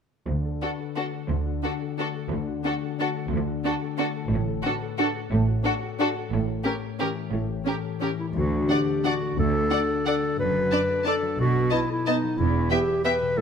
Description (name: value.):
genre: classical, orchestral ballroom waltz.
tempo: 179 BPM.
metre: 3/4.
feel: uneven beats, rubato.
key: D major.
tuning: A4 = 441 Hz.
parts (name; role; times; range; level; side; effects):
concert harp; arpeggios; 0.3-13.4 s; E2 to C#5; -30 LUFS; left 11 dB; none.
rich studio cello section; bass; 0.3-13.4 s; D2 to B2; -29 LUFS; right 3 dB; none.
warm studio double bass section; bass; 0.3-13.4 s; E1 to D2; -28 LUFS; right 4 dB; none.
warm studio violin section; melody; 0.6-13.1 s; A4 to A5; -35 LUFS; equal; none.
rich studio violin section; second line; 0.6-13.1 s; F#4 to E5; -30 LUFS; left 3 dB; none.
warm studio viola section; accompaniment; 0.6-13.1 s; B3 to D4; -31 LUFS; right 3 dB; none.
mellow clarinet; second line; 8.2-13.4 s; D#4 to B4; -25 LUFS; equal; none.
room: light reverb.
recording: close, detailed microphones.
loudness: -23 LUFS.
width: side -7 dB against mid.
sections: 0.3-8.4 A section; 8.4-13.4 B section.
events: none.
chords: 0.3 D; 4.3 D/A; 6.3 A7b9; 8.4 D; 10.4 D/F#; 11.4 B7; 12.4 Em.